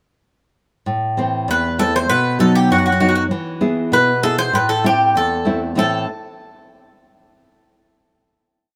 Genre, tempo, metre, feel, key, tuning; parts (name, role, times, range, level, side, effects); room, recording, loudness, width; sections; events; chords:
greek folk, Greek bouzouki band; 98 BPM; 2/4; straight; A dorian sharp4; A4 = 441 Hz
nylon-string guitar; accompaniment; 0.9-6.1 s; E2 to G#4; -20 LUFS; equal
Greek bouzouki; melody; 1.5-6.1 s; F#4 to C5; -19 LUFS; equal
light reverb; -17 LUFS; mono
0.9-5.8 A section; 5.8-7.0 final chord
0.9 Am; 2.1 B; 3.3 E; 4.5 Am